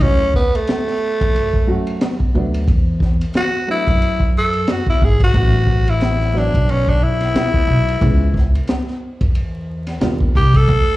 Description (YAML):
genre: hip hop, jazz-hop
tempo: 90 BPM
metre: 4/4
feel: swing 58% on 16ths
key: unclear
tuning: A4 = 439 Hz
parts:
  - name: growling tenor saxophone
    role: melody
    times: 0.0-11.0 s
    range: A3 to A4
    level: -19 LUFS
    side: left 1 dB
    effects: plate reverb, slapback echo
  - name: dark upright piano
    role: accompaniment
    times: 0.0-10.4 s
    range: F3 to C#5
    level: -24 LUFS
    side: right 2 dB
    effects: plate reverb, slapback echo
  - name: upright bass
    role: bass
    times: 0.0-11.0 s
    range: G#1 to F#2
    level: -18 LUFS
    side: equal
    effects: none
  - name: crunchy breakbeat drum kit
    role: drums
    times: 0.0-10.9 s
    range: hi-hat, kick drum, ride cymbal, snare drum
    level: -18 LUFS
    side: equal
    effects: none
room: little or no reverb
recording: live gig heard through the venue's PA, club reverb, vinyl crackle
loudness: -14 LUFS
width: side -17 dB against mid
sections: 0.0-11.0 A section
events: tenor saxophone solo 0.0-11.0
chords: 0.0 Dmaj7; 2.7 N.C.; 5.3 A69; 7.3 Dm7; 8.0 C#m7; 10.0 D#maj7